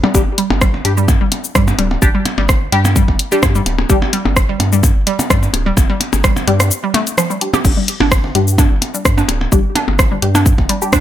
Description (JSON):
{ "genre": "minimal techno", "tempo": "128 BPM", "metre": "4/4", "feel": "swing 53% on 16ths", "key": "unclear", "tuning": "A4 = 438 Hz", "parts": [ { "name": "hollow square pluck", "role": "riff", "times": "0.0-11.0 s", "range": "F3 to G4", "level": "-20 LUFS", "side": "equal", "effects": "chorus, sidechain pumping, tape echo" }, { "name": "percussion blips", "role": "percussion", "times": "0.0-11.0 s", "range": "none", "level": "-20 LUFS", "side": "left 1 dB", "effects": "none" }, { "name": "filtered dub chord stab", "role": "stabs", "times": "0.1-10.9 s", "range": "G3 to G4", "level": "-20 LUFS", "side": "left 3 dB", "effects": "phaser, lush chorus, cassette tape, tape echo" }, { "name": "round analog bass", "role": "bass", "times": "0.1-11.0 s", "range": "D1 to G2", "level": "-17 LUFS", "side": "equal", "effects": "sidechain pumping" }, { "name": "electronic kick drum", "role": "drums", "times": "0.1-11.0 s", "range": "none", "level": "-14 LUFS", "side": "equal", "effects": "none" }, { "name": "house drum kit", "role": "drums", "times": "0.1-11.0 s", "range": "crash cymbal, hi-hat, rim click, shaker", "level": "-18 LUFS", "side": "left 1 dB", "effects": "none" } ], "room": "little or no reverb", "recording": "none", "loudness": "-12 LUFS", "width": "side -12 dB against mid", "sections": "0.0-11.0 A section", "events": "break 6.7-7.6", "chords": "0.0 G5", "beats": "| 0.15 0.61 1.08 1.55 | 2.02 2.49 2.96 3.43 | 3.90 4.37 4.83 5.30 | 5.77 6.24 6.71 7.18 | 7.65 8.12 8.58 9.05 | 9.52 9.99 10.46 10.93" }